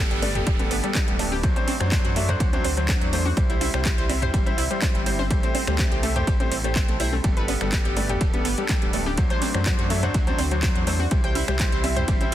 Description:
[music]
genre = progressive house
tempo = 124 BPM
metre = 4/4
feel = straight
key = unclear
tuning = A4 = 440 Hz
[part]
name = lush unison pad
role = sustained chords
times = 0.0-12.3 s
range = G3 to E5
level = -33 LUFS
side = equal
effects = chorus, phaser, sidechain pumping
[part]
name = analog pluck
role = arpeggios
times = 0.0-12.3 s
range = F#3 to G5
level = -30 LUFS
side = right 1 dB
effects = chorus, sidechain pumping, digital delay
[part]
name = clear concert grand piano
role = stabs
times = 0.0-12.3 s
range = F#3 to E5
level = -28 LUFS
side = equal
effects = vintage 12-bit sampler grit, sidechain pumping, digital delay
[part]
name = round analog bass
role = bass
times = 0.0-12.3 s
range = D1 to F#2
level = -27 LUFS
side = equal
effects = sidechain pumping
[part]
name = downlifter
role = sound effects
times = 0.0-3.4 s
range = none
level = -37 LUFS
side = right 2 dB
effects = none
[part]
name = house drum kit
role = drums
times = 0.1-12.3 s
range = finger snaps, handclaps, hi-hat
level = -30 LUFS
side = equal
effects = overdrive, sidechain pumping on hats, sidechain pumping on toms
[part]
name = electronic bongos, congas and toms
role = percussion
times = 0.1-12.3 s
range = none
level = -34 LUFS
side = left 2 dB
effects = sidechain pumping on perc, sidechain pumping on toms
[part]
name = dusty soul sampler-style drum kit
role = drums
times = 0.2-12.3 s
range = hi-hat, ride cymbal, snare drum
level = -39 LUFS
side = right 3 dB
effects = none
[part]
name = electronic kick drum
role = drums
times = 0.5-12.2 s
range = none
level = -24 LUFS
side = equal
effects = overdrive
[sound]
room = digital ambience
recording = dense, heavily limited modern master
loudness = -20 LUFS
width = side -12 dB against mid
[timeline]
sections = 0.0-12.3 A section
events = none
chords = 0.0 Gadd9; 1.4 D7; 3.4 C; 5.3 Am7; 7.2 Gadd9; 9.2 D7; 11.1 C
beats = 0.47 0.95 | 1.44 1.92 2.40 2.89 | 3.37 3.85 4.34 4.82 | 5.31 5.79 6.27 6.76 | 7.24 7.72 8.21 8.69 | 9.18 9.66 10.14 10.63 | 11.11 11.60 12.08

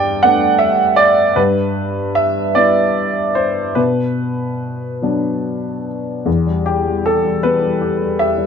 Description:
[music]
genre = neoclassical minimalist piano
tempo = 48-54 BPM (dotted quarters)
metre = 6/8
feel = rubato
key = E minor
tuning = A4 = 442 Hz
[part]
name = warm baby grand piano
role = solo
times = 0.0-8.5 s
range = E2 to G5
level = -14 LUFS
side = equal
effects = none
[sound]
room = moderate studio reverb, RT60 0.6 s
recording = band playing live in one room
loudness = -14 LUFS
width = side -7 dB against mid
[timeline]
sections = 0.0-6.3 A section; 6.3-8.5 B section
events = none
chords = 0.0 Gadd9; 1.4 Em/G; 3.8 Bm; 6.3 Em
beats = 0.22 | 1.37 2.55 | 3.77 5.03 | 6.26 7.43

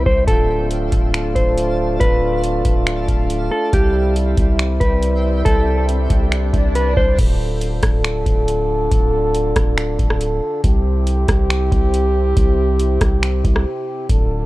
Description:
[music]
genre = hip hop, atmospheric cloud-rap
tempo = 139 BPM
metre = 4/4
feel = half-time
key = D minor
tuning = A4 = 437 Hz
[part]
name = mellow electric guitar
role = melody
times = 0.0-7.2 s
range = G4 to C5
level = -21 LUFS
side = equal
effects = tape echo
[part]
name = mellow French horn section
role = sustained chords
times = 0.0-14.5 s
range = C3 to A4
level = -22 LUFS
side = equal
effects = stereo widening, sidechain pumping
[part]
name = long sustained 808-style bass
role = bass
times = 0.0-14.5 s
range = D1 to C2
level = -19 LUFS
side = equal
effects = none
[part]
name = twinkling granular texture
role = texture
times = 0.0-7.1, 14.3-14.5 s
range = C4 to F5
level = -33 LUFS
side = right 1 dB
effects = built-in reverb
[part]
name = booming analog drum machine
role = drums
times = 0.1-14.3 s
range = crash cymbal, finger snaps, hi-hat, kick drum, rim click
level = -17 LUFS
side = equal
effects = none
[part]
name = swell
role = sound effects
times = 6.1-7.2 s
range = none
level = -29 LUFS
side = left 1 dB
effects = none
[sound]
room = little or no reverb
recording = worn, warbling old tape, cassette tape, warbly pitch drift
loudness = -15 LUFS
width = side -18 dB against mid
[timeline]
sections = 0.0-7.2 A section; 7.2-14.5 B section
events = swell 6.1-7.2; break 13.7-14.1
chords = 0.3 Dm; 3.7 C; 7.2 Dm; 10.6 C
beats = | 0.28 0.71 1.14 1.57 | 2.00 2.44 2.87 3.30 | 3.73 4.16 4.59 5.03 | 5.46 5.89 6.32 6.75 | 7.18 7.62 8.05 8.48 | 8.91 9.34 9.77 10.21 | 10.64 11.07 11.50 11.93 | 12.36 12.80 13.23 13.66 | 14.09

